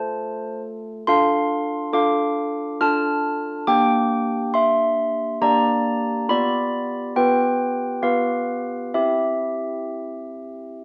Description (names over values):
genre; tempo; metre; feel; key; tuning
classical, tune for handbells; 69 BPM; 3/4; straight; unclear; A4 = 440 Hz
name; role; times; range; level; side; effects
handbells; solo; 0.0-10.8 s; A3 to F6; -22 LUFS; equal; none
room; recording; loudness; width
moderate recital hall reverb, RT60 1.4 s; worn, warbling old tape, cassette tape, warbly pitch drift; -21 LUFS; mono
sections
0.0-10.8 A section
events
none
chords
0.0 F/A; 1.1 Dm; 3.7 Gm/Bb; 6.3 G7/B; 8.9 C